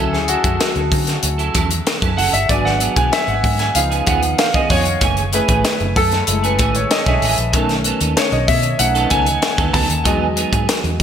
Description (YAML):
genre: polished 1980s jazz-funk pop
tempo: 95 BPM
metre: 4/4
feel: straight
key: unclear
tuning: A4 = 441 Hz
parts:
  - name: warm grand piano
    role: accompaniment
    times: 0.0-11.0 s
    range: D#3 to A5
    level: -19 LUFS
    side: left 1 dB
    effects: analog chorus
  - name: clean electric guitar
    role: riff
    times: 0.0-10.9 s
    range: E3 to A4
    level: -23 LUFS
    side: right 7 dB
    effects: ensemble chorus
  - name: vintage muted fingered electric bass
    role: bass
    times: 0.0-11.0 s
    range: F#1 to E3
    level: -21 LUFS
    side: equal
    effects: none
  - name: crisp fusion drum kit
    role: drums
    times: 0.1-11.0 s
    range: hi-hat, kick drum, snare drum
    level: -18 LUFS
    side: equal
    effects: gated reverb
room: moderate lush hall reverb, RT60 2.2 s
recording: bright 1980s-style digital production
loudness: -14 LUFS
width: side -8 dB against mid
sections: 0.0-11.0 A section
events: grand piano solo 0.0-11.0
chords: 0.0 Dmaj9; 2.5 G#m7b5; 3.8 C#7; 5.0 F#m9; 7.5 B7; 10.1 Emaj9